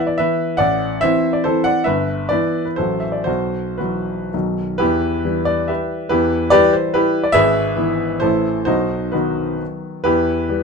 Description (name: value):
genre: classical, romantic triple-time dance for piano with dotted rhythms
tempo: 106-156 BPM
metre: 3/4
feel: rubato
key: E minor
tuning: A4 = 440 Hz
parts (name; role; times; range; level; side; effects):
- clear grand piano; solo; 0.0-10.6 s; G1 to F#5; -16 LUFS; equal; none
room: light reverb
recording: dark, warm production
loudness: -16 LUFS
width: side -4 dB against mid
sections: 0.0-4.8 A section; 4.8-10.6 B section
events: none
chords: 0.0 E5; 0.6 Am; 1.9 Em/G; 2.8 F#m7b5/A; 3.3 Bsus4; 4.3 B; 4.8 Em; 7.3 E/G#; 8.2 Am; 8.7 B; 10.1 Em